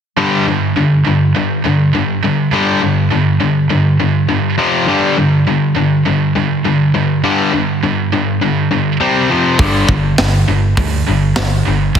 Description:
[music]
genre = hard rock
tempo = 102 BPM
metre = 4/4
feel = straight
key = unclear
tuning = A4 = 439 Hz
[part]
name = cranked stack guitar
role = riff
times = 0.2-12.0 s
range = F2 to C4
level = -15 LUFS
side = left 7 dB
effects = overdrive
[part]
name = scooped high-gain guitar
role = riff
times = 0.2-12.0 s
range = F2 to C4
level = -15 LUFS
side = right 8 dB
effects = distortion
[part]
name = picked electric bass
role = bass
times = 9.6-12.0 s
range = G1 to D2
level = -16 LUFS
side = right 1 dB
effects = none
[part]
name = tight metal drum kit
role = drums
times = 9.6-12.0 s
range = hi-hat, kick drum, snare drum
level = -17 LUFS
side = equal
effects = soft clipping on kick
[sound]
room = light reverb, studio ambience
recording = dense, heavily limited modern master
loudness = -11 LUFS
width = side -8 dB against mid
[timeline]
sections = 0.2-12.0 A section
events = none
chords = 0.2 G5; 4.6 F5; 4.9 G5; 9.0 C5; 9.3 F5; 9.6 G5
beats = | 0.17 0.76 1.35 1.94 | 2.52 3.11 3.70 4.29 | 4.88 5.47 6.06 6.65 | 7.24 7.83 8.41 9.00 | 9.59 10.18 10.77 11.36 | 11.95

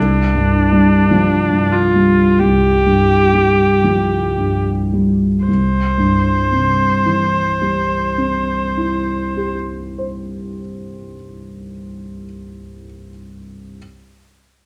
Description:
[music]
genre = classical, romantic duo for viola and grand piano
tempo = 34-54 BPM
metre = 4/4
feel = rubato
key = C major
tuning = A4 = 443 Hz
[part]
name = rich viola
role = melody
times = 0.0-9.5 s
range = D4 to C5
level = -19 LUFS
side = equal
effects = none
[part]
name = dark concert grand piano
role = accompaniment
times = 0.0-13.8 s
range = C2 to C5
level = -19 LUFS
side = equal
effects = none
[sound]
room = moderate recital hall reverb, RT60 1.6 s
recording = none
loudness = -15 LUFS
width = mono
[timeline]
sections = 0.0-5.5 A section; 5.5-11.6 B section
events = slowing down 0.0-5.5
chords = 0.0 G5/C; 5.5 C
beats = 1.11 2.38 3.82 | 5.46 7.05 8.60 10.13

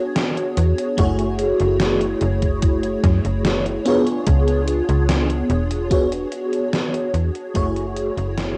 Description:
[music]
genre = vaporwave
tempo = 73 BPM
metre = 4/4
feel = straight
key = F# minor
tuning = A4 = 440 Hz
[part]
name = FM electric piano with soft pad layer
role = accompaniment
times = 0.0-8.6 s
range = A3 to C#5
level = -23 LUFS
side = equal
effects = phaser, ensemble chorus, cassette tape, tape echo
[part]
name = gated 80s digital drum machine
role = drums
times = 0.2-8.5 s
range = hi-hat, snare drum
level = -27 LUFS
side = equal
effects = gated reverb, gated reverb snare, vintage 12-bit sampler grit, cassette tape
[part]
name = slap-like FM bass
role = bass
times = 0.6-8.6 s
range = E1 to F#2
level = -24 LUFS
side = equal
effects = transformer saturation
[part]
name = electronic kick drum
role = drums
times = 1.0-7.7 s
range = none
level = -21 LUFS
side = equal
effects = vintage 12-bit sampler grit, cassette tape
[sound]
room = digital ambience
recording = home recording on cassette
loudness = -20 LUFS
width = mono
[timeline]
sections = 0.0-8.6 A section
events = fade-out 5.4-8.6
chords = 0.0 E13; 1.0 F#m9; 3.9 C#7b9; 5.9 E13; 7.6 F#m9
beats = 0.16 | 0.98 1.80 2.63 3.45 | 4.27 5.09 5.91 6.74 | 7.56 8.38

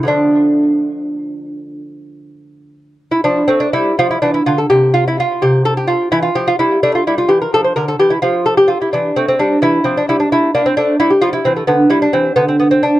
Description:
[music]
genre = classical, baroque-style dance for lute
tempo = 73-90 BPM (dotted quarters)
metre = 12/8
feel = rubato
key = D minor, F major from 3.2 s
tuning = A4 = 440 Hz
[part]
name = lute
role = solo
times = 0.0-13.0 s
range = C3 to C5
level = -12 LUFS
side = equal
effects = tape echo
[sound]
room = light reverb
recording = dry, close 1970s-style studio recording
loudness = -11 LUFS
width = side -15 dB against mid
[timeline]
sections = 0.0-3.2 A section; 3.2-13.0 A section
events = none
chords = 0.1 Dm; 3.2 F; 6.1 G7(no3)/E; 7.5 Dmadd9; 8.9 Fmaj13/E; 11.7 G5/D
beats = | 0.10 0.91 1.70 2.48 | 3.25 3.98 4.70 5.41 | 6.11 6.82 7.53 8.23 | 8.92 9.62 10.30 10.99 | 11.67 12.36

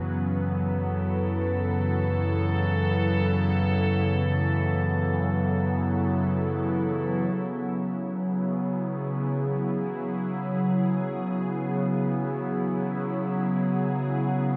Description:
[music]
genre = ambient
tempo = free time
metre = none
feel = none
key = E major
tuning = A4 = 440 Hz
[part]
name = evolving wavetable pad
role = sustained chords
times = 0.0-14.6 s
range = C#3 to B4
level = -28 LUFS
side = equal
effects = chorus, built-in reverb
[part]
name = warm sub bass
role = bass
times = 0.0-7.3 s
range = F#2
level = -31 LUFS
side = equal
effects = none
[part]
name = analog drone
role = drone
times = 0.0-14.6 s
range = E3 to B3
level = -36 LUFS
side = equal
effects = chorus, phaser
[sound]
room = moderate spring reverb, RT60 2.5 s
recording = none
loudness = -26 LUFS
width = mono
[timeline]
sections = 0.0-7.4 A section; 7.4-14.6 B section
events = none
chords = 0.0 F#m; 7.4 E69/C#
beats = free time

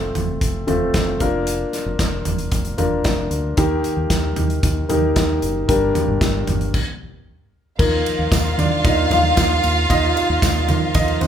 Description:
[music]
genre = piano-driven pop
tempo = 114 BPM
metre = 4/4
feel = straight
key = unclear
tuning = A4 = 441 Hz
[part]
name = warm concert grand piano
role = accompaniment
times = 0.0-11.3 s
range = G2 to F5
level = -21 LUFS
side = left 1 dB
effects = none
[part]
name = fingered electric bass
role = bass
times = 0.0-11.3 s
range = F1 to Eb3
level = -23 LUFS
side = equal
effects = none
[part]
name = modern studio drum kit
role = drums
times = 0.2-11.3 s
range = crash cymbal, hi-hat, kick drum, ride cymbal, snare drum, toms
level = -21 LUFS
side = equal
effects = none
[part]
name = warm studio violin section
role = second line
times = 7.8-11.3 s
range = Eb4 to F5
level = -21 LUFS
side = right 2 dB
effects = none
[part]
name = tambourine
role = percussion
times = 7.8-11.3 s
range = none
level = -35 LUFS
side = right 8 dB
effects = none
[sound]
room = moderate large studio reverb, RT60 1.2 s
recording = band playing live in one room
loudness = -16 LUFS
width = side -9 dB against mid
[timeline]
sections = 0.0-7.8 A section; 7.8-11.3 B section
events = stop 6.7-7.8; grand piano solo 7.8-11.3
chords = 0.0 F; 1.2 Bb/F; 3.6 Eb; 5.7 Gm; 7.8 Ebsus2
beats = 0.42 0.94 | 1.47 2.00 2.52 3.05 | 3.58 4.11 4.63 5.16 | 5.69 6.21 6.74 7.27 | 7.79 8.32 8.85 9.37 | 9.90 10.43 10.95

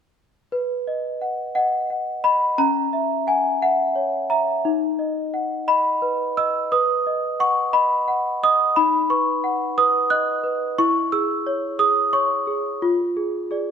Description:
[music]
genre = classical, lullaby for celesta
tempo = 58 BPM (dotted quarters)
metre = 6/8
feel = straight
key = B major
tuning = A4 = 440 Hz
[part]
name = celesta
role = solo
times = 0.5-13.7 s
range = C#4 to F#6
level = -18 LUFS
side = equal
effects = none
[sound]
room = moderate scoring stage reverb, RT60 1.7 s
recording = none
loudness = -19 LUFS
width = side -7 dB against mid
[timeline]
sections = 0.5-13.7 A section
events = none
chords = 0.5 B; 2.6 F#7/C#; 4.7 B/D#; 6.7 B; 8.8 B/D#; 10.8 C#m/E; 12.8 Fm6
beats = | 0.52 1.55 | 2.59 3.62 | 4.65 5.68 | 6.71 7.74 | 8.75 9.76 | 10.78 11.79 | 12.81

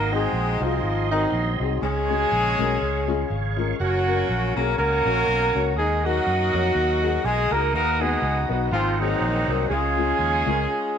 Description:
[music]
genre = uptempo gospel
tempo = 122 BPM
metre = 4/4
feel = swing 56% on 8ths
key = F# major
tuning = A4 = 440 Hz
[part]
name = dark horn section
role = melody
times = 0.0-11.0 s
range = D#3 to A#4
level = -22 LUFS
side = equal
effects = none
[part]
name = warm concert grand piano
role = accompaniment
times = 0.0-10.6 s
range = G#2 to G#5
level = -29 LUFS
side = left 12 dB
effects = none
[part]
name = bright tonewheel organ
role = sustained chords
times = 0.0-10.7 s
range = G#4 to D#6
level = -32 LUFS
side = right 11 dB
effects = slow rotary speaker, chorus vibrato
[part]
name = fingered electric bass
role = bass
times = 0.0-10.7 s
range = F#1 to F#2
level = -26 LUFS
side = right 1 dB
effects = none
[sound]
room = moderate echo chamber reverb, RT60 1.3 s, small room ambience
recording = 1960s-style stereo with parts hard left and right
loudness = -20 LUFS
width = side -8 dB against mid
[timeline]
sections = 0.0-11.0 A section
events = grand piano fill 2.8-3.8; stop 10.7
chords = 0.0 G#7; 1.8 C#sus4; 2.8 C#; 3.8 F#; 5.8 D#m; 7.7 B/D#; 8.7 G#9; 9.7 C#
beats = 0.34 0.83 1.32 | 1.82 2.31 2.81 3.30 | 3.79 4.29 4.78 5.27 | 5.76 6.26 6.75 7.24 | 7.73 8.23 8.72 9.21 | 9.70 10.19 10.68

